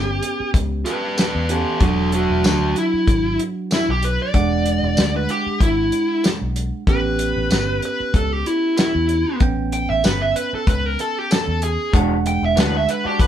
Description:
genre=straight-eighth soul blues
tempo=95 BPM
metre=4/4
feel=swing 54% on 16ths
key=unclear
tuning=A4 = 439 Hz
part: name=dark smooth lead guitar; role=melody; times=0.0-13.3 s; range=C#4 to G5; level=-21 LUFS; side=equal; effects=overdrive
part: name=bell-like tine electric piano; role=accompaniment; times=0.0-13.3 s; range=F#3 to G5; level=-25 LUFS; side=right 4 dB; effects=none
part: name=vintage muted fingered electric bass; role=bass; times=0.0-13.3 s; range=E1 to E2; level=-23 LUFS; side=left 1 dB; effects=none
part: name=warm soul drum kit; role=drums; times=0.2-13.3 s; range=hi-hat, kick drum, snare drum, tambourine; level=-19 LUFS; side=left 1 dB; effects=none
part: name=electric guitar through a small old amp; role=stabs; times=11.9-13.2 s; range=E3 to F#4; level=-25 LUFS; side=left 5 dB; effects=none
room=light reverb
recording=band playing live in one room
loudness=-17 LUFS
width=side -10 dB against mid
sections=0.0-13.3 A section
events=lead electric guitar solo 0.0-13.3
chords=0.0 A9 (rootless); 1.8 E9; 6.9 A9; 11.9 E9

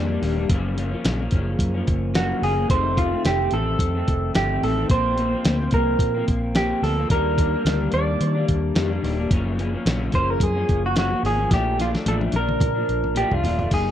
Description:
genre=indie pop, bedroom pop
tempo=109 BPM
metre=4/4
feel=swing 55% on 16ths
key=unclear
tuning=A4 = 439 Hz
part: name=electric guitar through a small old amp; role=accompaniment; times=0.0-13.9 s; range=F2 to Ab4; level=-26 LUFS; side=left 2 dB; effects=lush chorus, warbly pitch drift
part: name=vintage muted fingered electric bass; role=bass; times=0.0-13.9 s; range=Eb1 to Eb3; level=-25 LUFS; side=equal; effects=none
part: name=dusty soul sampler-style drum kit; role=drums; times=0.2-13.9 s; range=crash cymbal, hi-hat, kick drum, snare drum, toms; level=-23 LUFS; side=equal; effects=none
part: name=electric guitar through a small old amp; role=melody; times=2.2-13.9 s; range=F4 to D5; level=-24 LUFS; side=right 2 dB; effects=wide subtle chorus, tape echo
room=light reverb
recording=dry, close 1970s-style studio recording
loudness=-19 LUFS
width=side -10 dB against mid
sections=0.0-13.7 A section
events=drum fill 11.5-13.7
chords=0.5 Gbmaj7; 2.7 F7; 4.9 Bbsus2; 7.1 Ebmaj7; 9.3 Gbmaj7; 11.5 Bbmaj7

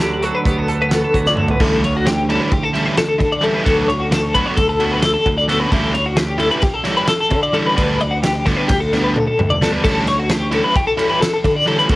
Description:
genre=math rock and midwest emo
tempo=262 BPM (eighths)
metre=9/8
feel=straight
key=unclear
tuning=A4 = 442 Hz
part: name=twelve-string electric guitar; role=accompaniment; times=0.0-3.7 s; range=D2 to A4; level=-22 LUFS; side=right 3 dB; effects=lush chorus, cassette tape
part: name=twelve-string electric guitar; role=arpeggios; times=0.0-12.0 s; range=F#4 to D5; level=-18 LUFS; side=left 2 dB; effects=tremolo, cassette tape, analog delay
part: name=fuzz fingered electric bass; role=bass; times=0.0-12.0 s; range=D2 to D3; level=-22 LUFS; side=equal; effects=overdrive
part: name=loose indie drum kit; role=drums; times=0.0-12.0 s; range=crash cymbal, hi-hat, kick drum, ride cymbal, snare drum, toms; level=-20 LUFS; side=equal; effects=cassette tape
part: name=overdriven electric guitar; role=riff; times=1.6-12.0 s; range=D3 to F#4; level=-20 LUFS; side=right 1 dB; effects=cassette tape
room=small room ambience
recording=home recording on cassette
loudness=-14 LUFS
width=side -19 dB against mid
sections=0.0-1.6 A section; 1.6-12.0 B section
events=drum fill 1.3-1.6, 9.1-9.8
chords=0.0 Gmaj7/D; 1.6 A9sus4/D; 3.7 Bm7/D; 5.7 A9sus4/D; 7.8 G/D; 9.8 A9sus4/D

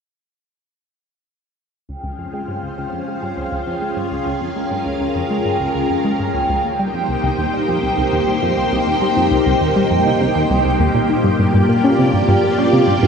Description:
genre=ambient, sequencer-driven space music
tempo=101 BPM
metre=4/4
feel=straight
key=Db lydian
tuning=A4 = 440 Hz
part: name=string machine, full ensemble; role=sustained chords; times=2.2-13.1 s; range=Bb3 to G5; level=-18 LUFS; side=left 1 dB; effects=phaser, ensemble chorus
part: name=tight sequenced synth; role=riff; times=1.9-13.1 s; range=C2 to Db4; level=-20 LUFS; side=equal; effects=chorus, tape echo
part: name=pulsing gated texture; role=texture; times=1.9-13.1 s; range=G5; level=-23 LUFS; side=right 2 dB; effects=chorus, built-in reverb
room=wet scoring stage reverb, RT60 1.9 s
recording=none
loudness=-15 LUFS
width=side -6 dB against mid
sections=1.9-13.1 A section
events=fade-in on synth arpeggio sound 1.9-13.1; fade-in on string machine 1.9-13.1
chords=1.9 Dbmaj7; 6.6 Cm7; 11.4 Gm7

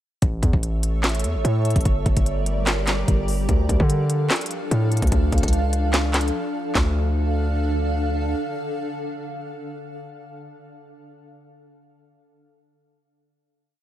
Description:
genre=hip hop, trap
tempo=147 BPM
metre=4/4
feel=half-time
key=D harmonic minor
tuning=A4 = 440 Hz
part: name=granular cloud pad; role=sustained chords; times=0.7-10.1 s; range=D3 to F5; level=-28 LUFS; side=right 1 dB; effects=built-in reverb
part: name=hard-hitting 808-style bass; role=bass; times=0.2-8.3 s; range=G1 to D3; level=-21 LUFS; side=equal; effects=none
part: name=trap drum kit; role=drums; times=0.2-6.9 s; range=handclaps, hi-hat, kick drum, snare drum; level=-22 LUFS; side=equal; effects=none
room=digital ambience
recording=none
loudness=-19 LUFS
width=side -12 dB against mid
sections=0.2-6.8 hook; 6.8-10.0 final chord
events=break 6.3-6.8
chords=0.2 A; 1.9 Gm; 3.5 Dm

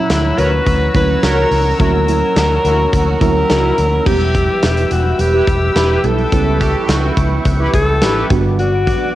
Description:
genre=1980s-style pop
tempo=106 BPM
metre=4/4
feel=straight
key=unclear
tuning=A4 = 438 Hz
part: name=bright alto saxophone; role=melody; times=0.0-9.1 s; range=E4 to B4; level=-17 LUFS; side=left 1 dB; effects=none
part: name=FM electric piano with soft pad layer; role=accompaniment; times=0.0-9.2 s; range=A#2 to G4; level=-22 LUFS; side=right 7 dB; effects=chorus, tremolo
part: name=sweeping resonant pad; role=sustained chords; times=0.0-9.2 s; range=B4 to E6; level=-24 LUFS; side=equal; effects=chorus
part: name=vintage muted fingered electric bass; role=bass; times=0.1-8.9 s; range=E1 to D2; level=-17 LUFS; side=equal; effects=none
part: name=big rock drum kit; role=drums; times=0.1-9.0 s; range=crash cymbal, hi-hat, kick drum, snare drum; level=-19 LUFS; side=equal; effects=none
part: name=analog synth brass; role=stabs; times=0.4-8.3 s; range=E4 to C#5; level=-21 LUFS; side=equal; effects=chorus
part: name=rich symphonic violin section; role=second line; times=2.4-7.6 s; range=E4 to G4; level=-28 LUFS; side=right 6 dB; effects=tape echo
room=moderate spring reverb, RT60 1.6 s, studio reverb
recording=home recording on cassette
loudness=-12 LUFS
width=side -14 dB against mid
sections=0.0-4.1 A section; 4.1-9.2 B section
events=none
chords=0.0 F#7; 4.1 Em; 6.3 C#m7b5; 8.3 Gmaj7

